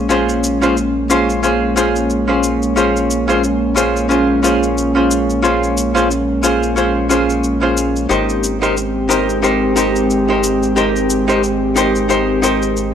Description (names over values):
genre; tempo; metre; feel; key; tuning
sunset chillout; 90 BPM; 4/4; swing 57% on 16ths; Bb dorian; A4 = 441 Hz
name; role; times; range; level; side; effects
archtop guitar, miked and amplified; accompaniment; 0.0-12.9 s; Db4 to C5; -16 LUFS; left 1 dB; auto-pan, vintage 12-bit sampler grit, analog delay
airy breathy pad; sustained chords; 0.0-12.9 s; Ab3 to G4; -17 LUFS; equal; chorus
round analog bass; bass; 0.0-12.9 s; Ab1 to Bb1; -24 LUFS; right 1 dB; none
shaker; drums; 0.1-12.9 s; none; -24 LUFS; left 2 dB; none
room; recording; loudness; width
light reverb; dry, gritty hardware recording; -13 LUFS; side -8 dB against mid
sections
0.0-12.9 A section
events
filter sweep on analog synth pad 0.0-12.9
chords
0.0 Bbm7; 8.1 Abmaj7